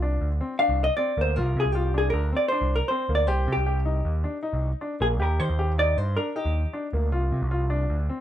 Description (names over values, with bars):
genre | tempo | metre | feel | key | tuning
progressive instrumental, band music in an uneven meter | 156 BPM | 5/4 | straight | unclear | A4 = 440 Hz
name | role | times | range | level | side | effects
warm baby grand piano | arpeggios | 0.0-8.2 s | Bb3 to G4 | -31 LUFS | left 2 dB | tape echo
overdriven picked electric bass | bass | 0.0-8.1 s | Bb1 to Eb3 | -24 LUFS | equal | none
vintage hollow-body jazz guitar | melody | 0.6-6.9 s | G4 to F5 | -26 LUFS | equal | none
room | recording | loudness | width
light reverb | rough home demo mix | -22 LUFS | side -11 dB against mid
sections
0.0-8.2 A section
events
hollow-body jazz guitar solo 0.0-8.2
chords
0.0 Bbadd9/C; 3.3 Cm9; 5.2 Ebmaj7; 7.1 Bbadd9/C (rootless)